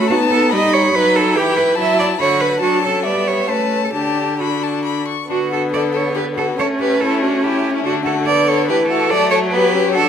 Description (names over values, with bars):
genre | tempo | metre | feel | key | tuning
quick classical-period movement for string quartet | 142 BPM | 3/4 | rubato | D major | A4 = 440 Hz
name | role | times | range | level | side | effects
rich violin | melody | 0.0-10.1 s | C#4 to C#6 | -21 LUFS | left 10 dB | none
rich violin | second line | 0.0-10.1 s | A3 to F#4 | -22 LUFS | left 3 dB | none
rich viola | accompaniment | 0.0-10.1 s | D3 to C#4 | -20 LUFS | right 1 dB | none
clear cello | bass | 0.0-10.1 s | E4 to E5 | -18 LUFS | right 4 dB | none
room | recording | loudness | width
wet recital hall reverb, RT60 1.4 s | none | -14 LUFS | side -8 dB against mid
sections
0.0-5.3 A section; 5.3-10.1 A section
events
none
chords
0.1 B7; 1.4 Em; 2.6 D/F#; 3.1 Em7/G; 3.5 A; 3.9 D; 6.6 A7; 7.9 D; 9.1 D/F#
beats
| 0.10 0.52 0.94 | 1.35 1.77 2.20 | 2.62 3.05 3.49 | 3.94 4.40 4.86 | 5.31 5.74 6.17 | 6.59 7.01 7.43 | 7.85 8.27 8.69 | 9.11 9.53 9.95